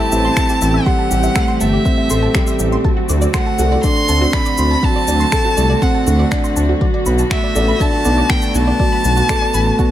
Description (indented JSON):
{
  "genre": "piano and strings electronica",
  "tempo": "121 BPM",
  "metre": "4/4",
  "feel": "straight",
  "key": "unclear",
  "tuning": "A4 = 439 Hz",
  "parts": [
    { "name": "rich violin", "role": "melody", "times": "0.0-9.9 s", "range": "E5 to C6", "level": "-20 LUFS", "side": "equal", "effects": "tape echo" },
    { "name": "rich chamber string section", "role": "sustained chords", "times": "0.0-9.9 s", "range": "D3 to G4", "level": "-26 LUFS", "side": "left 2 dB", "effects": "sidechain pumping" },
    { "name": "wide unison pluck", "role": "arpeggios", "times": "0.0-9.9 s", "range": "F#4 to C6", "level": "-27 LUFS", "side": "right 3 dB", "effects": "sidechain pumping, tape echo" },
    { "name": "felt-muted upright piano", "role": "riff", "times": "0.0-9.9 s", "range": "F#3 to A4", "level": "-18 LUFS", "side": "right 1 dB", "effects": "tape echo" },
    { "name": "dark detuned saw bass", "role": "bass", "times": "0.1-9.7 s", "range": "G1 to D2", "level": "-16 LUFS", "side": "equal", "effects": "sidechain pumping" },
    { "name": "electronic shaker and finger snaps", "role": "drums", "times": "0.1-9.9 s", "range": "none", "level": "-24 LUFS", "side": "left 1 dB", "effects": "none" },
    { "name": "electronic kick drum", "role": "drums", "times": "0.4-9.9 s", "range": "none", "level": "-18 LUFS", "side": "equal", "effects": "none" }
  ],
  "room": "light reverb",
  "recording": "none",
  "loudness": "-13 LUFS",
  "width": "side -12 dB against mid",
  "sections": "0.0-9.9 A section",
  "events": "none",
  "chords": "0.0 Am7; 2.8 D7; 6.8 Bm7"
}